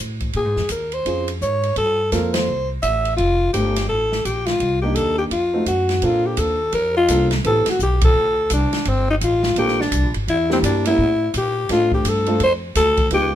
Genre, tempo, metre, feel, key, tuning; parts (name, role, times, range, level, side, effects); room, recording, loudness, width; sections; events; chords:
jazz, small-group swing and bop; 169 BPM; 4/4; swing 62% on 8ths; F major; A4 = 440 Hz
upright bass; bass; 0.0-13.3 s; F1 to Bb2; -23 LUFS; equal
open jazz drum kit; drums; 0.2-13.2 s; hi-hat, kick drum, ride cymbal, snare drum; -26 LUFS; equal
growling alto saxophone; melody; 0.4-13.3 s; C4 to E5; -19 LUFS; left 1 dB
warm upright piano; accompaniment; 1.1-13.3 s; G3 to Bb4; -23 LUFS; right 2 dB
light reverb; minimal, uncompressed stereo recording; -16 LUFS; side -11 dB against mid
0.0-6.0 A section; 6.0-13.3 B section
band accent 2.3, 8.0
0.4 Bbm7 (rootless); 1.8 Gm11; 2.5 C6; 3.2 F69; 4.6 Cm7; 5.3 F7b9; 6.0 Bbmaj9; 7.4 Am9; 8.2 D5; 8.9 Gm11; 10.3 Em7b5; 11.0 A5; 11.7 Dm7